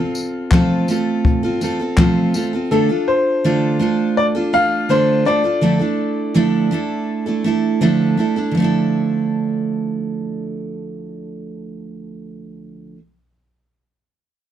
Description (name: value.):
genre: acoustic pop.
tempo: 82 BPM.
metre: 4/4.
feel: straight.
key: D minor.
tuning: A4 = 440 Hz.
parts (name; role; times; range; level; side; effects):
clear upright piano; melody; 0.0-7.8 s; A4 to F5; -19 LUFS; left 3 dB; plate reverb.
picked steel-string acoustic guitar; accompaniment; 0.0-13.0 s; D3 to A4; -17 LUFS; right 2 dB; none.
jazz brush drum kit; drums; 0.1-2.5 s; handclaps, kick drum, tambourine; -19 LUFS; left 2 dB; none.
room: moderate small room reverb, RT60 0.5 s.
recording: dark, warm production, faint mains hum.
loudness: -15 LUFS.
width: side -10 dB against mid.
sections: 0.0-8.5 A section; 8.5-11.5 B section.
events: none.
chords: 0.0 F; 2.7 Dm; 5.6 Dmadd9.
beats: 0.52 1.25 1.98 | 2.71 3.44 4.17 4.90 | 5.63 6.36 7.09 7.82 | 8.55 9.28 10.01 10.74.